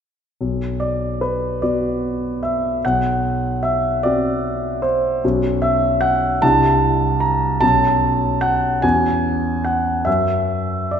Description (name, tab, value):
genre	classical, impressionist solo piano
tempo	50 BPM (dotted quarters)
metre	6/8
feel	rubato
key	B minor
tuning	A4 = 444 Hz
part	clear concert grand piano	solo	0.4-11.0 s	B1 to A#5	-16 LUFS	equal	none
room	wet scoring stage reverb, RT60 1.9 s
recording	minimal, uncompressed stereo recording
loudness	-16 LUFS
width	side -8 dB against mid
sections	0.4-11.0 A section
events	none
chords	0.4 Bm; 2.8 D13/B; 5.2 Bsus2; 6.4 Cadd9; 7.6 Bsus2; 8.8 E69; 10.1 F#7(no3)